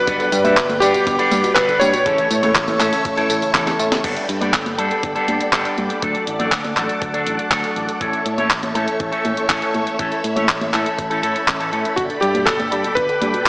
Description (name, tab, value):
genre	italo disco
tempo	121 BPM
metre	4/4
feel	straight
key	unclear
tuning	A4 = 440 Hz
part	clear electric grand piano	melody	0.0-3.7, 12.0-13.5 s	F#4 to C#5	-18 LUFS	equal	tape echo
part	string machine, full ensemble	sustained chords	0.0-13.5 s	A4 to D6	-24 LUFS	equal	phaser, ensemble chorus
part	analog pluck	arpeggios	0.0-4.0, 12.0-13.5 s	B2 to A3	-25 LUFS	equal	chorus, digital delay
part	electric guitar with an envelope filter	stabs	0.0-11.9 s	E3 to E5	-22 LUFS	equal	spring reverb
part	fingered electric bass	bass	0.1-13.5 s	G1 to A2	-27 LUFS	equal	none
part	clean 12-bit digital drum machine	drums	0.1-13.5 s	congas, crash cymbal, handclaps, hi-hat, snare drum, tambourine	-21 LUFS	equal	none
part	electronic kick drum	drums	0.1-13.5 s	none	-31 LUFS	equal	none
room	moderate lush hall reverb, RT60 1.7 s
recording	small speaker sound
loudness	-16 LUFS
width	side -25 dB against mid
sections	0.0-4.0 A section; 4.0-13.5 B section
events	drum fill 3.5-4.0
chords	0.1 G; 2.1 A; 4.0 Gadd9; 6.0 D; 8.0 A; 12.0 Gadd9